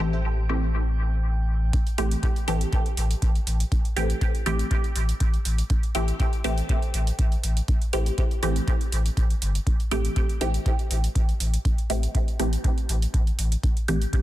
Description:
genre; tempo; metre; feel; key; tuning
dub techno; 121 BPM; 4/4; swing 53% on 16ths; A minor; A4 = 440 Hz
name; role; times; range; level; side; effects
filtered dub chord stab; stabs; 0.0-14.1 s; E3 to G4; -29 LUFS; right 1 dB; phaser, sidechain pumping, dub echo
warm sub bass; bass; 0.0-14.1 s; G1 to A1; -24 LUFS; equal; tube saturation, sidechain pumping
drifting glass-harmonics texture; texture; 0.0-1.7 s; G5; -44 LUFS; right 6 dB; chorus, built-in reverb, sidechain pumping
electronic hi-hat; drums; 1.7-14.2 s; none; -34 LUFS; right 4 dB; none
electronic kick drum; drums; 1.7-14.2 s; none; -24 LUFS; equal; none
room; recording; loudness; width
little or no reverb; dense, heavily limited modern master; -22 LUFS; side -15 dB against mid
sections
0.0-1.7 A section; 1.7-14.2 B section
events
filter sweep on synth stab 1.7-14.2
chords
0.0 Am7

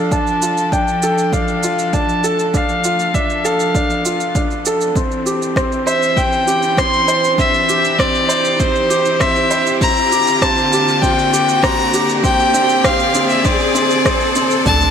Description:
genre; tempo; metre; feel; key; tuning
piano and strings electronica; 99 BPM; 4/4; straight; unclear; A4 = 440 Hz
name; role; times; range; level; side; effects
warm chamber string section; sustained chords; 0.0-14.9 s; D3 to D5; -23 LUFS; equal; sidechain pumping
felt-muted upright piano; riff; 0.0-14.9 s; C4 to C5; -19 LUFS; equal; ping-pong delay
riser and impact; sound effects; 1.8-14.9 s; none; -24 LUFS; equal; none
clear violin; melody; 0.1-14.9 s; C5 to C6; -16 LUFS; left 1 dB; low-pass filter
electronic kick drum; drums; 0.1-14.8 s; none; -20 LUFS; equal; none
electronic shaker and rim click; drums; 0.1-14.9 s; none; -22 LUFS; right 3 dB; none
round analog bass; bass; 14.7-14.9 s; D2; -18 LUFS; right 1 dB; sidechain pumping
room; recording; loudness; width
moderate echo chamber reverb, RT60 2.1 s; none; -13 LUFS; side -7 dB against mid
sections
0.0-14.7 A section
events
build-up 0.0-14.7; riser 1.8-14.7; impact 14.7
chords
0.0 Dm; 5.0 C; 9.8 Gm

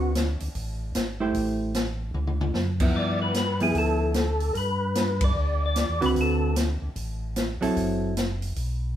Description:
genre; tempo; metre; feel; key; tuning
soul jazz organ trio; 150 BPM; 4/4; swing 64% on 8ths; D mixolydian; A4 = 437 Hz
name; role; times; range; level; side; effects
percussive tonewheel organ; melody; 0.0-0.1, 3.0-6.6 s; F#4 to D5; -27 LUFS; left 1 dB; slow rotary speaker, chorus vibrato
hollow-body jazz guitar; accompaniment; 0.0-8.1 s; D3 to C5; -26 LUFS; right 1 dB; none
mellow tonewheel organ; bass; 0.0-9.0 s; F#1 to G2; -28 LUFS; equal; slow rotary speaker
open jazz drum kit; drums; 0.2-8.7 s; crash cymbal, hi-hat, kick drum, ride cymbal, snare drum, toms; -29 LUFS; equal; none
room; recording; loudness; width
moderate stone room reverb, RT60 1.0 s; band playing live in one room; -23 LUFS; side -11 dB against mid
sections
0.0-9.0 A section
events
drum fill 2.2-2.6; band accent 5.2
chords
0.0 D7(no3); 1.4 Am7; 2.2 D69; 3.0 G13; 6.2 D13; 7.8 F#m7b5

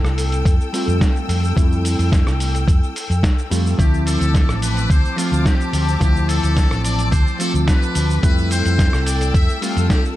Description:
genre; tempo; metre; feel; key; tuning
nu-disco, nu disco; 108 BPM; 4/4; straight; unclear; A4 = 442 Hz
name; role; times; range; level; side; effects
reed electric piano; accompaniment; 0.0-10.2 s; F3 to F4; -24 LUFS; equal; wide subtle chorus, sidechain pumping, analog delay
rich studio string section; sustained chords; 0.0-10.2 s; C4 to E6; -28 LUFS; left 4 dB; sidechain pumping
hollow-body short-scale fingered electric bass; bass; 0.0-9.9 s; A1 to F2; -19 LUFS; equal; none
dusty soul sampler-style drum kit; drums; 0.0-10.2 s; hi-hat, rim click, shaker, snare drum; -26 LUFS; right 1 dB; none
electronic kick drum; drums; 0.5-10.0 s; none; -16 LUFS; equal; none
muted trumpet section; melody; 3.8-10.0 s; F4 to E5; -26 LUFS; left 1 dB; tape echo
room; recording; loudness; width
digital ambience; none; -15 LUFS; side -15 dB against mid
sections
0.0-10.2 A section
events
none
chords
0.0 Fmaj9; 3.8 Dm7; 8.2 Fmaj9

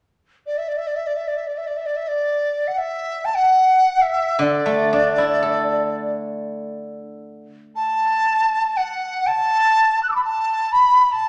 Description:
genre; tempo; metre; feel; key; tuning
chinese traditional, Chinese chamber ensemble; free time; none; none; D gong mode; A4 = 441 Hz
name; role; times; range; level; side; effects
mellow hollow dizi; melody; 0.5-11.3 s; D5 to F#6; -20 LUFS; equal; none
steel-string zither; accompaniment; 4.4-7.5 s; D3 to A4; -24 LUFS; equal; none
room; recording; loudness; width
wet recital hall reverb, RT60 1.5 s; none; -20 LUFS; mono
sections
0.0-11.3 A section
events
none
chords
none

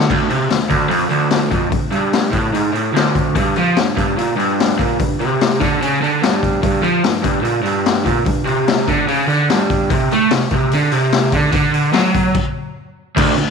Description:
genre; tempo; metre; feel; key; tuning
garage rock duo or trio; 147 BPM; 4/4; straight; unclear; A4 = 440 Hz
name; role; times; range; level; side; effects
crunchy overdriven guitar; riff; 0.0-13.5 s; D2 to A3; -15 LUFS; right 2 dB; none
raw garage drum kit; drums; 0.0-13.5 s; crash cymbal, hi-hat, kick drum, snare drum; -18 LUFS; left 4 dB; none
room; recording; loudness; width
moderate echo chamber reverb, RT60 1.5 s, small room ambience; 1960s-style stereo; -14 LUFS; side -5 dB against mid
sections
0.1-13.2 A section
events
stop 12.3-13.2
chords
none

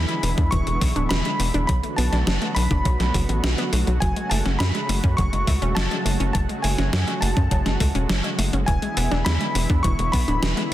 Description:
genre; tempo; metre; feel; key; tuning
synthwave; 103 BPM; 4/4; straight; F# minor; A4 = 438 Hz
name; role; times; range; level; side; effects
clear electric grand piano; melody; 0.0-10.7 s; G#5 to C#6; -28 LUFS; equal; digital delay
lush unison pad; sustained chords; 0.0-10.7 s; C#3 to F#4; -30 LUFS; right 1 dB; chorus, sidechain pumping
wide unison pluck; arpeggios; 0.0-10.7 s; E3 to D4; -29 LUFS; left 1 dB; digital delay
tight sequencer bass; bass; 0.0-10.5 s; D1 to F#2; -23 LUFS; equal; none
gated 80s digital drum machine; drums; 0.1-10.7 s; hi-hat, snare drum; -27 LUFS; equal; gated reverb, gated reverb snare, overdrive
electronic kick drum; drums; 0.4-10.3 s; none; -23 LUFS; equal; overdrive
room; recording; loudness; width
light reverb, digital ambience; dense, heavily limited modern master; -19 LUFS; side -13 dB against mid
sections
0.0-10.7 A section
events
none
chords
0.0 E7; 1.7 Bm7; 4.0 F#madd9; 8.7 E7

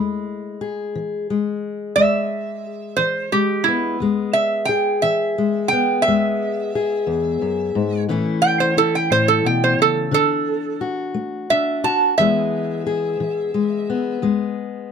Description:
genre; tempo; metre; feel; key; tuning
acoustic country blues, solo or duo; 59 BPM (dotted quarters); 12/8; straight; unclear; A4 = 440 Hz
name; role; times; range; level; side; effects
fingerpicked steel-string acoustic guitar; accompaniment; 0.0-14.9 s; E2 to G#4; -21 LUFS; left 5 dB; none
lap resonator guitar; melody; 2.0-14.2 s; E4 to A5; -18 LUFS; right 4 dB; none
room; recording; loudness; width
light reverb; close, detailed microphones; -17 LUFS; side -6 dB against mid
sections
0.0-14.9 A section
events
resonator guitar played with a steel bar solo 0.0-14.9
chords
0.0 E; 8.1 A; 10.1 D; 12.2 E

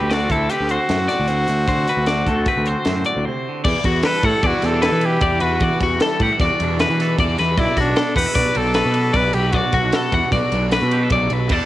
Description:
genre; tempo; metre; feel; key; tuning
math rock and midwest emo; 153 BPM; 5/4; straight; unclear; A4 = 440 Hz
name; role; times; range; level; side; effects
brilliant trumpet; melody; 0.0-10.3 s; D4 to B4; -22 LUFS; equal; none
twangy electric guitar; accompaniment; 0.0-11.7 s; A2 to A4; -27 LUFS; right 8 dB; cassette tape
twelve-string electric guitar; arpeggios; 0.0-11.7 s; F#4 to F#5; -22 LUFS; left 4 dB; cassette tape
fuzz picked electric bass; bass; 0.0-11.6 s; B1 to E3; -21 LUFS; equal; overdrive
crisp fusion drum kit; drums; 0.1-11.6 s; crash cymbal, hi-hat, kick drum, ride cymbal, snare drum; -23 LUFS; equal; cassette tape
room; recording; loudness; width
small room ambience; home recording on cassette; -16 LUFS; side -14 dB against mid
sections
0.0-3.7 A section; 3.7-11.7 B section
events
break 3.3-3.7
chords
0.0 D7; 3.7 Em11; 7.6 Bm7

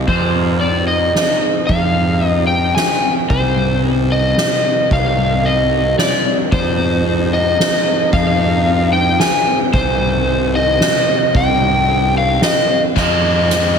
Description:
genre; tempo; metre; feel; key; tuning
post-rock; 112 BPM; 3/4; straight; F minor; A4 = 435 Hz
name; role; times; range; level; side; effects
muted studio string section; sustained chords; 0.0-13.8 s; C3 to C5; -26 LUFS; right 3 dB; none
clean electric guitar; arpeggios; 0.0-13.8 s; C3 to Ab4; -22 LUFS; left 2 dB; ensemble chorus, tape echo
fuzz fingered electric bass; bass; 0.0-13.8 s; C2 to F2; -18 LUFS; equal; overdrive
overdriven slide guitar; melody; 0.1-13.8 s; C5 to Ab5; -16 LUFS; left 1 dB; tape echo
soft-mallet drum kit; drums; 0.1-13.6 s; crash cymbal, hi-hat, kick drum, ride cymbal, snare drum; -18 LUFS; equal; none
sludgy distorted guitar; riff; 13.0-13.8 s; F3 to F4; -20 LUFS; left 8 dB; overdrive
room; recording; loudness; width
wet plate reverb, RT60 2.0 s; dreamy mix soaked in reverb; -12 LUFS; side -6 dB against mid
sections
0.1-13.0 A section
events
drum fill 13.0-13.8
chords
0.1 Fm7; 3.3 Cm; 6.5 Fm7; 9.7 Cm; 13.0 Fm7

